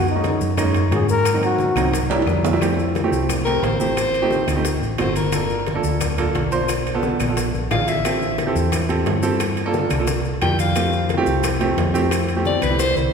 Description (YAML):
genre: Afro-Cuban jazz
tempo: 177 BPM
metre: 4/4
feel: straight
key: F major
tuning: A4 = 439 Hz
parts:
  - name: breathy trombone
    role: melody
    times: 0.0-1.9 s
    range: Eb4 to Bb4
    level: -22 LUFS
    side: left 3 dB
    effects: none
  - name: hollow-body short-scale fingered electric bass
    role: bass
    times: 0.0-13.1 s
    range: G1 to Ab2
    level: -23 LUFS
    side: equal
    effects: none
  - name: congas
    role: percussion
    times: 0.1-13.0 s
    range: none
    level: -28 LUFS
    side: left 1 dB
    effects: none
  - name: maracas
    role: percussion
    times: 0.1-13.1 s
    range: none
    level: -35 LUFS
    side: left 7 dB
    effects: none
  - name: warm baby grand piano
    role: accompaniment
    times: 0.2-13.0 s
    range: Gb3 to C5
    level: -22 LUFS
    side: right 2 dB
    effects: none
  - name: bongos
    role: percussion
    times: 0.2-13.1 s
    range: none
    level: -31 LUFS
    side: left 5 dB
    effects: none
  - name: timbales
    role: percussion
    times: 0.2-13.0 s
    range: none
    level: -30 LUFS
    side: right 6 dB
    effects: none
  - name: claves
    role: percussion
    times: 0.6-12.8 s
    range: none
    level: -36 LUFS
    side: left 7 dB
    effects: none
  - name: bright soprano saxophone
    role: second line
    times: 3.5-5.6, 7.7-13.1 s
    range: E4 to G5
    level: -23 LUFS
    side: left 2 dB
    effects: none
room: wet concert hall reverb, RT60 1.8 s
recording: recorded in a church or concert hall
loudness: -17 LUFS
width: side -6 dB against mid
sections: 0.0-2.6 A section; 2.6-13.1 A section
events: trombone solo 0.0-2.6; drum fill 2.1-2.6, 13.0; soprano saxophone solo 2.6-13.1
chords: 0.0 Gb6; 1.3 Ab9; 1.9 C7; 2.6 Fmaj7; 4.0 Am7b5; 4.7 D7; 5.3 Gm7; 6.7 Bm7b5; 7.4 Bb7#11; 8.0 Am7; 9.4 Gm7; 10.1 C7; 10.8 Fmaj7